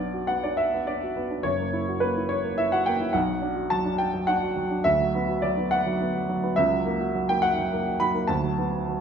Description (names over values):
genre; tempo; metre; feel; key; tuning
classical, romantic character piece for solo piano; 70 BPM (dotted quarters); 6/8; rubato; B minor; A4 = 440 Hz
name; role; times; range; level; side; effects
warm upright piano; solo; 0.0-9.0 s; F#1 to B5; -23 LUFS; right 1 dB; none
room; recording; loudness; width
wet stone room reverb, RT60 1.0 s; minimal, uncompressed stereo recording; -23 LUFS; side -7 dB against mid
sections
0.0-9.0 A section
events
none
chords
0.0 Bm; 1.5 F#7; 3.1 Bm; 4.9 Bm/D; 6.6 F#7/C#; 8.3 Bm/D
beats
0.59 | 1.45 2.31 | 3.15 4.00 | 4.86 5.71 | 6.57 7.43 | 8.29